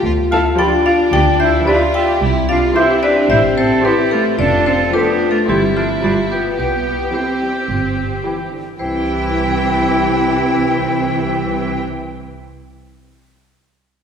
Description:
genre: cinematic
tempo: 110 BPM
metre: 4/4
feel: straight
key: C major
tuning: A4 = 440 Hz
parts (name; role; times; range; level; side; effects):
- rich chamber violin section; second line; 0.0-11.8 s; C4 to G4; -23 LUFS; left 1 dB; none
- dark French horn section; sustained chords; 0.0-11.8 s; D3 to G4; -22 LUFS; left 4 dB; none
- rich chamber double bass section; bass; 0.0-11.8 s; F1 to D2; -22 LUFS; right 3 dB; none
- marimba with hard mallets; melody; 0.3-11.8 s; F4 to A5; -19 LUFS; left 2 dB; none
- bright oboe; second line; 0.3-11.8 s; D4 to F5; -22 LUFS; right 2 dB; none
- clear studio cello section; bass; 0.3-11.8 s; F3 to A4; -21 LUFS; right 2 dB; none
- rich chamber violin section; melody; 0.6-11.8 s; G5 to D6; -31 LUFS; left 2 dB; none
- clear clarinet; second line; 0.6-11.8 s; E4 to G4; -26 LUFS; left 3 dB; none
- hollow concert flute; second line; 0.6-11.8 s; G5 to D6; -26 LUFS; left 1 dB; none
- warm symphonic viola section; accompaniment; 0.6-11.8 s; E3 to A4; -23 LUFS; right 1 dB; none
room: wet scoring stage reverb, RT60 1.9 s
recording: heard from further back in the room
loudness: -13 LUFS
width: side -7 dB against mid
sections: 0.0-8.8 A section; 8.8-13.2 B section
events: none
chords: 0.0 G7/D; 2.2 C; 3.3 Am7; 4.4 Dm/F; 5.5 C/G; 6.0 G7; 6.6 C

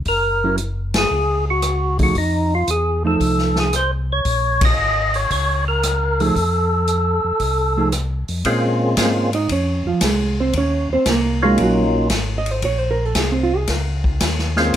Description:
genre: soul jazz organ trio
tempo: 114 BPM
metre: 4/4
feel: swing 69% on 8ths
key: Bb minor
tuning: A4 = 440 Hz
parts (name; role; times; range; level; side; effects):
- mellow tonewheel organ; bass; 0.0-14.8 s; Gb1 to Bb2; -22 LUFS; left 1 dB; chorus vibrato, slow rotary speaker
- percussive tonewheel organ; melody; 0.1-14.8 s; Gb3 to Eb5; -18 LUFS; equal; slow rotary speaker, overdrive
- swinging big-band drum kit; drums; 0.1-14.8 s; hi-hat, kick drum, ride cymbal, rim click, snare drum; -23 LUFS; left 1 dB; none
- hollow-body jazz guitar; accompaniment; 0.4-14.7 s; F3 to Eb5; -19 LUFS; right 3 dB; none
room: light reverb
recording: none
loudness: -16 LUFS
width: side -10 dB against mid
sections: 0.0-8.4 A section; 8.4-14.8 B section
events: band accent 0.8, 4.5; hollow-body jazz guitar solo 8.4-14.8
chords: 0.1 Gb; 2.2 F7; 4.3 Bbm7; 6.4 F; 8.4 Bbm9; 10.5 Ebm9; 12.6 Bbm9

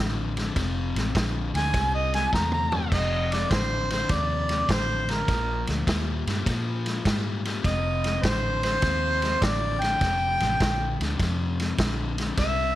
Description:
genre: electric blues shuffle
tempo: 102 BPM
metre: 4/4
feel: swing 67% on 8ths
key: F mixolydian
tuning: A4 = 439 Hz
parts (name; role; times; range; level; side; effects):
- crunchy overdriven guitar; riff; 0.0-12.8 s; F2 to A3; -31 LUFS; left 6 dB; none
- vintage muted fingered electric bass; bass; 0.0-12.8 s; F1 to Bb2; -28 LUFS; equal; none
- vintage drum kit; drums; 0.4-12.6 s; crash cymbal, kick drum, ride cymbal, snare drum, toms; -28 LUFS; equal; none
- warm harmonica; melody; 1.6-12.8 s; Bb4 to Bb5; -26 LUFS; right 1 dB; overdrive
room: light reverb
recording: none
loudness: -23 LUFS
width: side -14 dB against mid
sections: 0.0-2.9 A section; 2.9-12.8 B section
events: harmonica solo 0.0-2.9; drum fill 2.3-2.9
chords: 0.0 F; 1.7 C; 2.9 F7; 5.3 Bb7(no3); 7.6 F

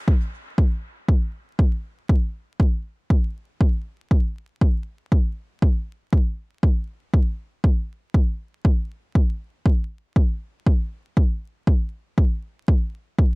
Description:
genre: techno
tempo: 119 BPM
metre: 4/4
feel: swing 53% on 16ths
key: none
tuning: none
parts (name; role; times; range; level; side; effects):
- electronic kick drum; drums; 0.1-13.3 s; none; -18 LUFS; equal; overdrive
room: digital ambience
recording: vinyl crackle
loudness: -20 LUFS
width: side -38 dB against mid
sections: 0.1-13.4 A section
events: none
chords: none

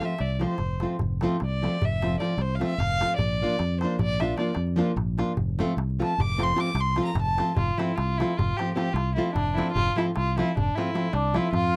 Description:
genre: balkan folk, Balkan wedding band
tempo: 302 BPM (eighths)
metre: 11/8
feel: straight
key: F major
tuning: A4 = 439 Hz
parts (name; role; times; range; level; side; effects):
- warm violin; melody; 0.0-11.8 s; D4 to D6; -31 LUFS; equal; none
- nylon-string guitar; accompaniment; 0.0-11.5 s; F3 to F4; -29 LUFS; equal; none
- darbuka; percussion; 0.0-11.7 s; none; -34 LUFS; equal; none
- fingered electric bass; bass; 0.2-11.8 s; F1 to F2; -30 LUFS; equal; none
- mellow accordion; second line; 11.2-11.8 s; D5 to F5; -32 LUFS; equal; none
room: light reverb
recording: dry, close 1970s-style studio recording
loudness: -26 LUFS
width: mono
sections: 0.0-7.6 A section; 7.6-11.8 B section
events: violin solo 0.0-7.6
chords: 0.0 F; 3.2 Bb; 5.4 F

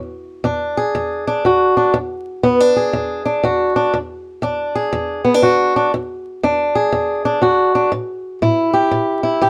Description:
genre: blues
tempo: 120 BPM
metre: 4/4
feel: swing 64% on 8ths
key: E mixolydian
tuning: A4 = 440 Hz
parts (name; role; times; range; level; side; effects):
- fingerpicked swing-style acoustic guitar; solo; 0.0-9.5 s; E2 to G#4; -17 LUFS; equal; none
room: light reverb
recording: vinyl crackle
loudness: -17 LUFS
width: mono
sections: 0.0-9.5 A section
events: none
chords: 0.0 E7; 7.9 A5

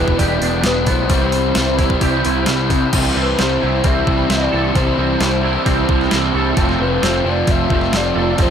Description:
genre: rock, shoegaze and dream pop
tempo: 132 BPM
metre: 4/4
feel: straight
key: C major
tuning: A4 = 442 Hz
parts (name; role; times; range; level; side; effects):
- breathy flute-like synth lead; melody; 0.0-8.5 s; B4 to E5; -23 LUFS; left 3 dB; chorus, analog delay
- airy breathy pad; sustained chords; 0.0-8.5 s; E4 to B5; -27 LUFS; right 3 dB; chorus
- twangy electric guitar; arpeggios; 0.0-8.5 s; G3 to A4; -26 LUFS; right 5 dB; ensemble chorus, analog delay
- crunchy overdriven guitar; riff; 0.0-8.5 s; E2 to F4; -22 LUFS; left 9 dB; wide subtle chorus
- raw garage guitar; riff; 0.0-8.5 s; C3 to F4; -24 LUFS; right 12 dB; overdrive, reverse reverb
- raw garage guitar; riff; 0.0-8.5 s; E2 to C4; -22 LUFS; left 1 dB; overdrive, phaser
- growling picked electric bass; bass; 0.0-8.5 s; E1 to C3; -21 LUFS; equal; overdrive
- detuned 8-bit digital drum machine; drums; 0.1-8.5 s; crash cymbal, hi-hat, kick drum, snare drum; -19 LUFS; equal; overdrive
room: light reverb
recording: none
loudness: -14 LUFS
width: side -8 dB against mid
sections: 0.0-2.9 A section; 2.9-8.5 B section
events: none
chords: 0.0 Em7; 1.1 Cmaj7; 2.9 C6; 6.6 Fmaj7

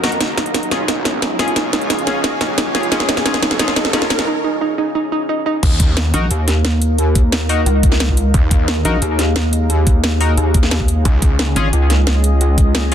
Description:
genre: dark technical drum and bass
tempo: 177 BPM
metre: 4/4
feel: straight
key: unclear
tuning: A4 = 440 Hz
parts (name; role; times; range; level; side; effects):
- deep dark ambient pad; sustained chords; 0.0-12.9 s; Db4 to F5; -24 LUFS; left 1 dB; chorus, built-in reverb, sidechain pumping
- band-passed chord stab; stabs; 0.0-4.1, 6.1-12.9 s; Db4 to Bb4; -24 LUFS; left 3 dB; chorus, dub echo
- snarling distorted saw bass; bass; 0.0-6.1, 8.3-8.8, 11.1-11.5 s; Cb2 to F2; -22 LUFS; equal; distortion, tube saturation, high-pass filter
- drum and bass drum kit; drums; 0.0-12.9 s; crash cymbal, hi-hat, snare drum; -19 LUFS; equal; none
- riser; sound effects; 0.0-4.3 s; none; -26 LUFS; right 1 dB; none
- granular cloud pad; texture; 0.0-4.3 s; F4 to Bb5; -26 LUFS; equal; built-in reverb, sidechain pumping
- warbly dusty pluck; arpeggios; 0.2-5.6 s; Eb4; -22 LUFS; right 4 dB; chorus, sidechain pumping, dub echo
- electronic kick drum; drums; 5.6-12.6 s; none; -13 LUFS; equal; none
- pulsing pluck wobble bass; bass; 6.1-12.9 s; Ab1 to Eb2; -15 LUFS; equal; chorus
room: light reverb, digital ambience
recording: dense, heavily limited modern master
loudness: -13 LUFS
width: side -9 dB against mid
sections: 0.0-5.6 A section; 5.6-12.9 B section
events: build-up 0.0-5.6; drum fill 0.0-4.3; filter sweep on synth arpeggio sound 0.0-5.6; break 4.3-5.6; drop 5.6-12.9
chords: 0.2 Db; 5.6 Eb5; 11.1 Db5

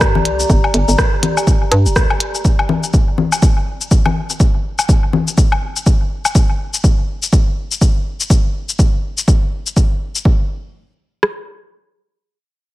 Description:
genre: minimal techno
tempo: 123 BPM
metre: 4/4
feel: swing 59% on 16ths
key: G minor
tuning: A4 = 439 Hz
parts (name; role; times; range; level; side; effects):
- hollow knocking FM bass; bass; 0.0-2.1 s; D1 to G2; -15 LUFS; equal; tube saturation, sidechain pumping
- minimal click drum kit; drums; 0.0-10.2 s; cabasa, hi-hat, rim click; -21 LUFS; left 2 dB; none
- punchy analog drum machine; drums; 0.0-11.4 s; kick drum, rim click; -14 LUFS; equal; none
- warbly tape-like pad; texture; 0.0-2.4 s; G4 to Bb5; -22 LUFS; equal; chorus, built-in reverb, sidechain pumping
- congas and woodblock; percussion; 0.2-6.3 s; none; -20 LUFS; left 4 dB; overdrive, analog delay
room: light reverb, digital ambience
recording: none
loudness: -13 LUFS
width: side -17 dB against mid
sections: 0.0-10.3 A section; 10.3-12.7 B section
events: none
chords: 0.0 Gm; 10.3 N.C.

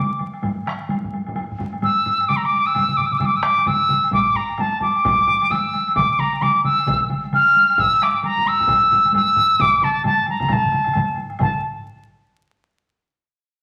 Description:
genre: japanese traditional, taiko drum ensemble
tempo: 132 BPM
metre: 4/4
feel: swing 60% on 16ths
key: unclear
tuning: A4 = 439 Hz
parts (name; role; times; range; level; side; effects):
- mellow piccolo; melody; 0.0-11.6 s; A5 to F6; -18 LUFS; equal; none
- taiko ensemble; percussion; 0.1-11.6 s; none; -30 LUFS; equal; none
- woodblock; percussion; 0.2-11.6 s; none; -35 LUFS; equal; none
- taiko ensemble; percussion; 0.4-11.8 s; none; -33 LUFS; equal; none
- solo taiko drums; percussion; 2.3-11.8 s; none; -29 LUFS; equal; none
- taiko ensemble; percussion; 4.1-11.6 s; none; -32 LUFS; equal; none
room: wet large studio reverb, RT60 1.0 s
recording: vinyl crackle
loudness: -18 LUFS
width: mono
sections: 0.0-11.4 A section; 11.4-13.2 B section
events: speeding up 0.0-13.2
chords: none

